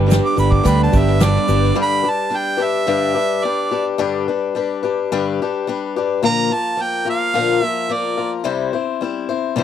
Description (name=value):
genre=folk rock and heartland rock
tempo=108 BPM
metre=4/4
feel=straight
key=G major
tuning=A4 = 440 Hz
part: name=picked swing-style acoustic guitar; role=accompaniment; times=0.0-9.6 s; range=G2 to C5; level=-19 LUFS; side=left 7 dB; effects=none
part: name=crunchy overdriven guitar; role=riff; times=0.0-1.8 s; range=G3 to B4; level=-21 LUFS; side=right 4 dB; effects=none
part: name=fingered electric bass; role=bass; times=0.0-1.7 s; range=G1 to D2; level=-16 LUFS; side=right 1 dB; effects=none
part: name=bright grand piano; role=accompaniment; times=0.1-1.6 s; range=B4 to A5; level=-28 LUFS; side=right 6 dB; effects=none
part: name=natural country drum kit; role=drums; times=0.1-1.7 s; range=hi-hat, kick drum, snare drum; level=-17 LUFS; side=equal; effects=none
part: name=egg shaker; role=percussion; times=0.1-1.6 s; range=none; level=-37 LUFS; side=right 10 dB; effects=none
part: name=clear harmonica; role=melody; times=0.2-8.3 s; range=D5 to D6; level=-19 LUFS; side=right 4 dB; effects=none
room=little or no reverb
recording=dry, close 1970s-style studio recording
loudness=-16 LUFS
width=side -9 dB against mid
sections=0.0-1.8 A section; 1.8-9.6 B section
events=harmonica solo 0.0-1.8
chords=0.0 G; 6.2 Bb; 8.4 C